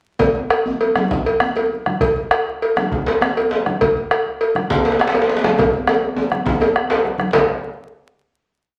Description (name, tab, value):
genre	west african traditional, West African drum ensemble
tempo	135 BPM (dotted quarters)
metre	12/8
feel	straight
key	none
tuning	none
part	bombo	percussion	0.2-7.5 s	none	-24 LUFS	equal	none
part	congas	percussion	0.2-7.5 s	none	-28 LUFS	equal	none
part	cowbell	percussion	0.2-7.5 s	none	-21 LUFS	equal	none
part	djembe	percussion	0.2-7.5 s	none	-36 LUFS	equal	none
part	djembe	percussion	0.2-7.5 s	none	-23 LUFS	equal	none
room	wet large studio reverb, RT60 0.8 s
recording	vinyl crackle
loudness	-18 LUFS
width	mono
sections	0.2-7.3 A section; 7.3-8.8 final hit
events	speeding up 0.2-8.8; drum fill 5.6-7.3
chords	none